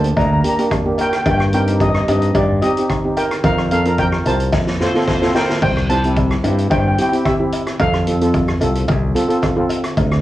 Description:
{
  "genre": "calypso",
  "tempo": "110 BPM",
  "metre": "4/4",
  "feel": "straight",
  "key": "C major from 5.6 s",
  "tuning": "A4 = 440 Hz",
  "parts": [
    { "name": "steel pan", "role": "melody", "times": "0.0-9.4 s", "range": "G4 to Bb5", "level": "-20 LUFS", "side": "equal", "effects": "cassette tape, plate reverb" },
    { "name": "steel pan", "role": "accompaniment", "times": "0.0-10.0 s", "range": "Bb3 to Bb4", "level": "-20 LUFS", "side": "right 1 dB", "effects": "cassette tape, plate reverb" },
    { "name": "fingered electric bass", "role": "bass", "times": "0.0-10.2 s", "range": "C2 to G2", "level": "-17 LUFS", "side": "equal", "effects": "none" },
    { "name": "street-band drum kit", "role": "drums", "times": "0.0-10.2 s", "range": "crash cymbal, hi-hat, kick drum, rim click, snare drum", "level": "-21 LUFS", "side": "equal", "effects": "cassette tape" },
    { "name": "cowbell", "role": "percussion", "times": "0.2-10.1 s", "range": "none", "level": "-27 LUFS", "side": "left 3 dB", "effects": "none" },
    { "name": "clear horn section", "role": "second line", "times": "4.8-5.6 s", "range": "C5", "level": "-24 LUFS", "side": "left 2 dB", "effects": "cassette tape, plate reverb" }
  ],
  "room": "light reverb",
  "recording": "home recording on cassette, small room ambience",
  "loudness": "-14 LUFS",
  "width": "side -15 dB against mid",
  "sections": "0.0-5.6 A section; 5.6-10.2 A section",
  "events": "drum fill 4.5-5.6",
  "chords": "0.0 Gm; 1.3 Cm/G; 3.4 Fsus4; 4.5 F; 5.6 C; 7.8 F"
}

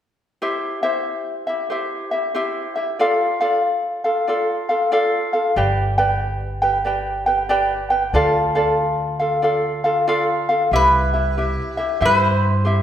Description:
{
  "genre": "Hawaiian",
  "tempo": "93 BPM",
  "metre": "4/4",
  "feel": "swing 64% on 8ths",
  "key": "C major",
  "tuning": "A4 = 440 Hz",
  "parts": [
    { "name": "ukulele", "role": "accompaniment", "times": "0.4-12.8 s", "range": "E4 to G5", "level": "-18 LUFS", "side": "equal", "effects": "none" },
    { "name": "upright bass", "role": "bass", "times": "5.6-12.8 s", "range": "G1 to G2", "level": "-23 LUFS", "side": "equal", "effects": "none" },
    { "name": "metal-body resonator slide guitar", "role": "melody", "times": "10.8-12.8 s", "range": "B4 to C5", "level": "-18 LUFS", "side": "equal", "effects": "none" }
  ],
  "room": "wet recital hall reverb, RT60 1.6 s",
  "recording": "recorded in a church or concert hall",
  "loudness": "-17 LUFS",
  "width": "side -10 dB against mid",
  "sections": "0.4-10.7 A section; 10.7-12.8 B section",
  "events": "none",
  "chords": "0.4 C; 3.0 Dm; 5.6 G; 8.1 Dm; 10.7 C"
}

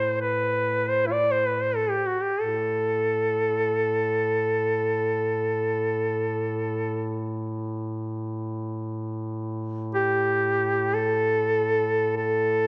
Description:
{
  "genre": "caucasian folk, Caucasian lament",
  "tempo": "free time",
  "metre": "none",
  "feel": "none",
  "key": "A minor",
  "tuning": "A4 = 440 Hz",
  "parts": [
    { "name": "warm duduk", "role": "melody", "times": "0.0-12.7 s", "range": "E4 to D5", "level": "-25 LUFS", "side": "equal", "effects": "none" },
    { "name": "mellow duduk", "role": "drone", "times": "0.0-12.7 s", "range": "A2", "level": "-33 LUFS", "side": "equal", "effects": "none" }
  ],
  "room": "moderate recital hall reverb, RT60 1.7 s",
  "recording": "dark, warm production",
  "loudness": "-26 LUFS",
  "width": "mono",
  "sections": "0.0-12.7 A section",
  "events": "none",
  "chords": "none"
}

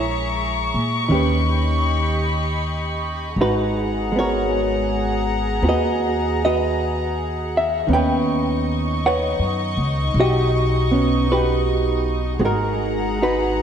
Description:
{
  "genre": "jazz ballad",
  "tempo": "53 BPM",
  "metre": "4/4",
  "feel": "swing 68% on 8ths",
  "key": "G# minor",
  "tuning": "A4 = 441 Hz",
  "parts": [
    { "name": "hollow-body jazz guitar", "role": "accompaniment", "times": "0.0-13.6 s", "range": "D#3 to G5", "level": "-21 LUFS", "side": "right 1 dB", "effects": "wide subtle chorus" },
    { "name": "warm studio string section", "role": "sustained chords", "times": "0.0-13.6 s", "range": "D#4 to C#6", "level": "-25 LUFS", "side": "left 2 dB", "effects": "none" },
    { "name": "upright bass", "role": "bass", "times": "0.0-13.6 s", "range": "G#1 to A#2", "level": "-23 LUFS", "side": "equal", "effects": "none" }
  ],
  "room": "wet lush hall reverb, RT60 2.9 s",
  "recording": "dreamy mix soaked in reverb",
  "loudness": "-18 LUFS",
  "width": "side -8 dB against mid",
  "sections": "0.0-13.6 A section",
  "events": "none",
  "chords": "0.0 A#m7b5; 1.1 D#aug7; 3.4 G#m9; 7.9 D#7alt; 12.4 G#m9"
}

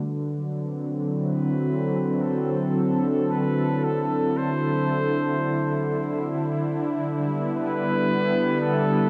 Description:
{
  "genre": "ambient",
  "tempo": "56 BPM",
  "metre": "3/4",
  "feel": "straight",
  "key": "unclear",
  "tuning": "A4 = 441 Hz",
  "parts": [
    { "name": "warm analog pad", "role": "sustained chords", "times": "0.0-9.1 s", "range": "D3 to F#5", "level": "-25 LUFS", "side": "equal", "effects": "chorus, tremolo" },
    { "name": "clear flugelhorn", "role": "melody", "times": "1.2-9.1 s", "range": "A4 to C5", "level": "-32 LUFS", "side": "equal", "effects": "diffuse ambient delay" }
  ],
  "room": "wet cathedral reverb, RT60 5.6 s",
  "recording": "worn, warbling old tape, cassette tape, warbly pitch drift",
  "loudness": "-24 LUFS",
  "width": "mono",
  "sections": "0.1-9.1 A section",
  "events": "fade-in on flugelhorn 0.1-9.1",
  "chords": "0.1 D9; 6.5 Em9"
}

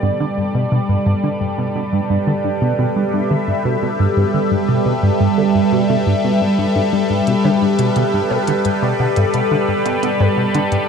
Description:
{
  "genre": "ambient, sequencer-driven space music",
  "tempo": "87 BPM",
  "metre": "4/4",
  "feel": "straight",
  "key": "G major",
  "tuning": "A4 = 445 Hz",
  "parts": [
    { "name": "phased analog pad", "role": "sustained chords", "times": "0.0-10.9 s", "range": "G3 to E5", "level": "-17 LUFS", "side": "equal", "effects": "phaser, chorus, shimmer reverb" },
    { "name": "tight sequenced synth", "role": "riff", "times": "0.0-10.8 s", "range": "G2 to G3", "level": "-18 LUFS", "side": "equal", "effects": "chorus, analog delay" },
    { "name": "minimal click drum kit", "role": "percussion", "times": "7.3-10.9 s", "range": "hi-hat, toms", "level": "-31 LUFS", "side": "left 6 dB", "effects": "analog delay" }
  ],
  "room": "wet huge ambient reverb, RT60 7.9 s",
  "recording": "dark, warm production",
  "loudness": "-14 LUFS",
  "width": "side -6 dB against mid",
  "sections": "0.0-10.9 A section",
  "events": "none",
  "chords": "0.0 Gadd9"
}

